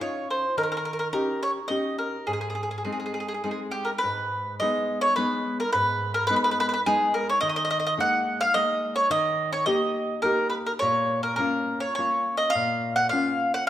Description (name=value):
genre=italian folk, Italian serenade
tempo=105 BPM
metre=3/4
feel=straight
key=Ab major, G# dorian from 4.0 s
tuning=A4 = 440 Hz
part: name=mandolin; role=melody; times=0.0-13.7 s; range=G4 to F#5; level=-24 LUFS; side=equal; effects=none
part: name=nylon-string guitar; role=accompaniment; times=0.0-13.6 s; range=Ab2 to G4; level=-30 LUFS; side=left 1 dB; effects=none
room=moderate recital hall reverb, RT60 1.5 s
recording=minimal, uncompressed stereo recording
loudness=-23 LUFS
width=side -12 dB against mid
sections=0.0-4.0 A section; 4.0-13.7 B section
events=none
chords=0.0 Dbadd9; 0.6 Eb7; 2.3 Ab; 4.0 G#m; 7.4 D#sus4; 9.1 D#; 10.8 A#m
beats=0.00 | 0.56 1.13 1.70 | 2.27 2.85 3.43 | 4.02 4.60 5.17 | 5.73 6.30 6.86 | 7.42 7.98 8.55 | 9.11 9.68 10.25 | 10.83 11.41 11.99 | 12.56 13.13